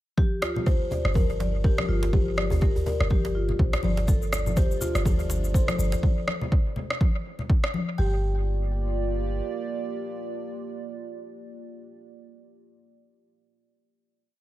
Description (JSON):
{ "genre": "afro house", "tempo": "123 BPM", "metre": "4/4", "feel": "swing 57% on 16ths", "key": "G minor", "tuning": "A4 = 440 Hz", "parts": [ { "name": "marimba with medium mallets", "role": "arpeggios", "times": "0.2-8.2 s", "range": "F4 to D5", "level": "-34 LUFS", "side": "equal", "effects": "sidechain pumping, tape echo" }, { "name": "electronic kick drum", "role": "drums", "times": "0.2-7.6 s", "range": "none", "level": "-22 LUFS", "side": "equal", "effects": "none" }, { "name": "congas", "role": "percussion", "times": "0.2-7.9 s", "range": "none", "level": "-33 LUFS", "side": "left 3 dB", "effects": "dub echo" }, { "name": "electronic rim click", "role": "drums", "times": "0.4-7.7 s", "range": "none", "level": "-31 LUFS", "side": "equal", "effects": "dub echo" }, { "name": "djembe", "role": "percussion", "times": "0.4-6.0 s", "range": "none", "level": "-33 LUFS", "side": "right 1 dB", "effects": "none" }, { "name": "buzzing kalimba", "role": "melody", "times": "0.7-11.9 s", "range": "G4 to G5", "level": "-34 LUFS", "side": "left 4 dB", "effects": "tape echo" }, { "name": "warm 808-style bass", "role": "bass", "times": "1.0-9.4 s", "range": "G1 to Bb1", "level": "-27 LUFS", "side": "equal", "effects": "sidechain pumping" }, { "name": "dark analog pad", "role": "sustained chords", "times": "4.4-11.9 s", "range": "A3 to D5", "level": "-35 LUFS", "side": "right 3 dB", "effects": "chorus, phaser, sidechain pumping" }, { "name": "cabasa", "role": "percussion", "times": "4.1-6.0 s", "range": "none", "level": "-39 LUFS", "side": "left 4 dB", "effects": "none" } ], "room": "light reverb, small room ambience", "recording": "echo-heavy mix", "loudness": "-23 LUFS", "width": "side -15 dB against mid", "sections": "0.2-8.0 groove; 8.0-11.9 final chord", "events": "none", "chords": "0.2 Gm; 4.1 Dm/G; 8.0 Gm7", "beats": "| 0.18 0.67 1.16 1.64 | 2.13 2.62 3.11 3.59 | 4.08 4.57 5.06 5.55 | 6.03 6.52 7.01 7.50 | 7.99 8.47 8.96 9.45 | 9.94 10.42 10.91 11.40" }